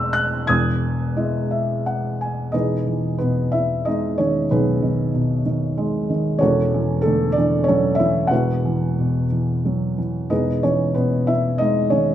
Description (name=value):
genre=classical, lyrical solo piano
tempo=85-96 BPM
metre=3/4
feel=rubato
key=E major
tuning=A4 = 443 Hz
part: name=felt-muted upright piano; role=solo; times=0.0-12.1 s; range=E1 to G#6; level=-18 LUFS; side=equal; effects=none
room=moderate scoring stage reverb, RT60 1.6 s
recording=minimal, uncompressed stereo recording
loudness=-18 LUFS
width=side -11 dB against mid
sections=0.0-2.5 A section; 2.5-12.1 B section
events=felt piano fill 1.2-2.5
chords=0.5 Emaj7; 6.4 Dmaj7/E; 8.3 Bsus4/E; 10.3 Emaj7